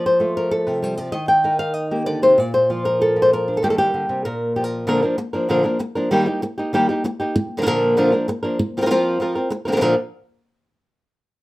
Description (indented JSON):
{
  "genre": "flamenco",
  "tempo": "194 BPM",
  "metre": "4/4",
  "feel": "straight",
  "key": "Bb major",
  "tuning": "A4 = 439 Hz",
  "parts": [
    { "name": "flamenco guitar", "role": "solo", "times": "0.0-9.9 s", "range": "Bb2 to G5", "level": "-17 LUFS", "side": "equal", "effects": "none" }
  ],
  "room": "light reverb",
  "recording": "rough home demo mix",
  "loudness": "-17 LUFS",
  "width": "side -19 dB against mid",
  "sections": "0.0-4.9 A section; 4.9-9.8 B section; 9.8-11.0 C section",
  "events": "none",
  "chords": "0.0 F; 1.1 Eb; 2.4 Bb; 3.6 Eb; 4.2 Bb5; 4.9 Bb; 6.1 Eb; 7.3 Bb; 8.6 Fsus4; 9.8 Bb"
}